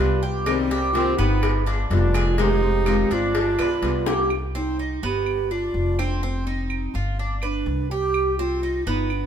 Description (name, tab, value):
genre	latin, Cuban son and guajira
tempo	125 BPM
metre	4/4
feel	straight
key	C harmonic minor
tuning	A4 = 440 Hz
part	bass ocarina	melody	0.0-9.3 s	C4 to G4	-25 LUFS	right 3 dB	none
part	warm trumpet	second line	0.0-4.1 s	G3 to Eb4	-31 LUFS	right 2 dB	none
part	nylon-string guitar	accompaniment	0.0-4.3 s	C3 to G4	-27 LUFS	left 7 dB	none
part	Cuban tres	arpeggios	0.0-9.3 s	Ab3 to B4	-28 LUFS	right 2 dB	none
part	upright bass	bass	0.0-9.3 s	F1 to C2	-25 LUFS	left 1 dB	none
part	claves	percussion	0.5-9.3 s	none	-36 LUFS	right 9 dB	none
part	cowbell and bongos	percussion	0.5-4.2 s	none	-30 LUFS	left 6 dB	none
room	light reverb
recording	minimal, uncompressed stereo recording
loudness	-20 LUFS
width	side -8 dB against mid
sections	0.0-4.3 A section; 4.3-9.3 B section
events	drum fill 4.1; ocarina solo 4.3-9.3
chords	0.5 Cm7; 1.4 G7; 2.4 Fm7; 3.3 G7; 4.3 Cm; 5.3 G7; 6.2 F5; 7.2 G; 8.1 Cm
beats	| 0.47 0.95 1.43 1.91 | 2.39 2.87 3.35 3.83 | 4.30 4.79 5.26 5.75 | 6.23 6.71 7.19 7.67 | 8.15 8.63 9.11